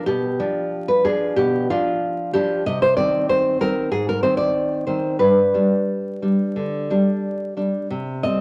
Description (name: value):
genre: romantic piece for solo classical guitar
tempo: 92 BPM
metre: 4/4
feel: uneven beats, rubato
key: unclear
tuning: A4 = 440 Hz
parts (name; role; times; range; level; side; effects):
- nylon-string guitar; solo; 0.0-8.4 s; G2 to Eb5; -20 LUFS; equal; none
room: wet large studio reverb, RT60 1.3 s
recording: vinyl crackle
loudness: -21 LUFS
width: mono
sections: 0.0-8.4 A section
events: none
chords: 0.1 G7/B; 2.6 Cm; 3.9 Ab; 5.2 G; 7.9 C5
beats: | 0.07 0.71 1.36 2.01 | 2.65 3.29 3.92 4.55 | 5.20 5.89 6.57 7.24 | 7.91